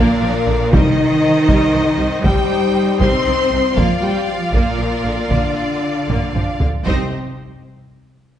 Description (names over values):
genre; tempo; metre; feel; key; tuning
cinematic, epic orchestral film score; 79 BPM (dotted quarters); 6/8; straight; C minor; A4 = 440 Hz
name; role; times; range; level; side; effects
rich symphonic violin section; melody; 0.0-7.1 s; Bb4 to C6; -24 LUFS; left 2 dB; none
warm symphonic violin section; second line; 0.0-7.1 s; C5 to F5; -26 LUFS; left 2 dB; none
rich studio viola section; accompaniment; 0.0-7.1 s; C3 to G4; -24 LUFS; right 2 dB; none
mellow French horn section; sustained chords; 0.0-7.1 s; Bb3 to C5; -19 LUFS; left 3 dB; none
rich symphonic cello section; bass; 0.0-7.1 s; Bb2 to C4; -22 LUFS; right 3 dB; none
rich symphonic double bass section; bass; 0.0-7.1 s; Bb1 to C2; -23 LUFS; right 3 dB; none
taiko ensemble; drums; 0.7-7.8 s; none; -19 LUFS; equal; none
timpani; percussion; 0.7-1.4, 6.9-7.1 s; C3; -24 LUFS; left 1 dB; none
room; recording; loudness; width
wet scoring stage reverb, RT60 1.5 s; nothing above 10.5 kHz; -14 LUFS; side -10 dB against mid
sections
0.0-6.9 A section; 6.9-8.4 B section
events
drum fill 6.1-6.9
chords
0.0 Bb; 0.7 Cm; 3.8 Bb; 6.9 Cm